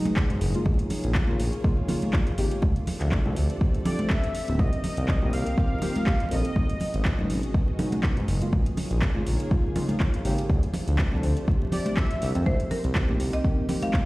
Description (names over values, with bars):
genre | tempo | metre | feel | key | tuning
deep house | 122 BPM | 4/4 | swing 54% on 16ths | unclear | A4 = 438 Hz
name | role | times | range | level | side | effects
soft string machine | sustained chords | 0.0-14.1 s | A3 to Eb5 | -39 LUFS | equal | ensemble chorus, sidechain pumping
deep mellow chord stab | stabs | 0.0-13.8 s | Cb3 to A4 | -32 LUFS | equal | chorus, sidechain pumping, analog delay
warbly tape-like pad | texture | 0.0-14.1 s | C4 to Gb5 | -37 LUFS | left 1 dB | chorus, built-in reverb, sidechain pumping
deep house drum kit | drums | 0.1-14.0 s | handclaps, hi-hat | -35 LUFS | equal | overdrive
congas | percussion | 0.1-13.9 s | none | -31 LUFS | equal | sidechain pumping on perc
electronic kick drum | drums | 0.2-14.0 s | none | -24 LUFS | equal | overdrive
smooth synth bass | bass | 0.3-13.3 s | D1 to Ab2 | -26 LUFS | equal | sidechain pumping
warm velvety synth lead | melody | 3.9-7.3, 11.7-12.5 s | D5 to F5 | -34 LUFS | equal | chorus, analog delay
marimba with hard mallets | melody | 12.5-13.9 s | Bb4 to F5 | -32 LUFS | equal | analog delay
room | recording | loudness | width
little or no reverb | played on a big sound system in a bare room, stone room reverb, vinyl crackle | -22 LUFS | side -20 dB against mid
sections
0.0-14.1 A section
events
none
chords
0.0 Abm7; 0.7 Bbm7; 2.6 Dm7; 4.6 Cm7; 6.6 Abm7; 8.5 Bbm7; 10.5 Dm7; 12.5 Cm7